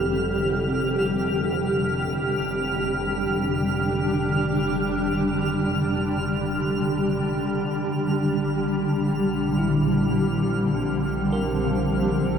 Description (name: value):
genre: ambient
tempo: free time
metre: none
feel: none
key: F major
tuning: A4 = 440 Hz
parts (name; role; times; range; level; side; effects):
- granular cloud pad; sustained chords; 0.0-12.4 s; D3 to G4; -23 LUFS; equal; built-in reverb
- bell-like tine electric piano; arpeggios; 0.0-12.4 s; E4 to Bb4; -32 LUFS; equal; fast stereo tremolo, ping-pong delay
- rich symphonic double bass section; bass; 0.0-12.4 s; F1 to Bb1; -31 LUFS; equal; none
- twinkling granular texture; texture; 0.0-12.4 s; F6; -32 LUFS; right 1 dB; built-in reverb, wide subtle chorus
- organ-like drone; drone; 10.6-12.4 s; F3 to C4; -34 LUFS; equal; ensemble chorus, built-in reverb, phaser
room: wet huge ambient reverb, RT60 8.6 s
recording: dreamy mix soaked in reverb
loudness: -21 LUFS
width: side -7 dB against mid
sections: 0.0-12.4 A section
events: none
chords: 0.0 Fmaj9; 8.4 Bbadd9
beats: free time